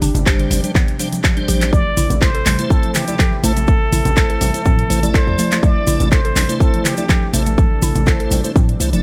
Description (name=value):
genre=afro house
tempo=123 BPM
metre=4/4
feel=swing 53% on 16ths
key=A minor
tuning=A4 = 443 Hz
part: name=warm analog pad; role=sustained chords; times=0.0-9.0 s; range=C3 to G4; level=-30 LUFS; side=equal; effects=chorus, sidechain pumping
part: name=mallet-like synth pluck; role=arpeggios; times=0.0-8.9 s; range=E3 to A4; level=-28 LUFS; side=equal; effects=chorus, phaser, cassette tape, sidechain pumping, tape echo
part: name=warm 808-style bass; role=bass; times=0.0-9.0 s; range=E1 to A2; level=-22 LUFS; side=equal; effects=sidechain pumping
part: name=afro-pop drum kit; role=drums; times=0.0-9.0 s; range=handclaps, hi-hat, toms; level=-24 LUFS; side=equal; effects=none
part: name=congas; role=percussion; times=0.0-9.0 s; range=none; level=-26 LUFS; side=equal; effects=none
part: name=egg shaker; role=percussion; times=0.0-9.0 s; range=none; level=-30 LUFS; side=equal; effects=none
part: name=tonewheel organ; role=stabs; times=0.3-9.0 s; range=G3 to D5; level=-27 LUFS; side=equal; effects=chorus vibrato, slow rotary speaker, sidechain pumping, tape echo
part: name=electronic kick drum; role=drums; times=0.3-8.7 s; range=none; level=-18 LUFS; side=equal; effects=none
part: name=trumpet with plunger mute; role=melody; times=1.7-8.8 s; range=G4 to D5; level=-26 LUFS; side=equal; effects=tape echo
room=digital ambience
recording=none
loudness=-16 LUFS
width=mono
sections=0.0-9.0 A section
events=none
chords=0.0 Gsus4; 1.7 Am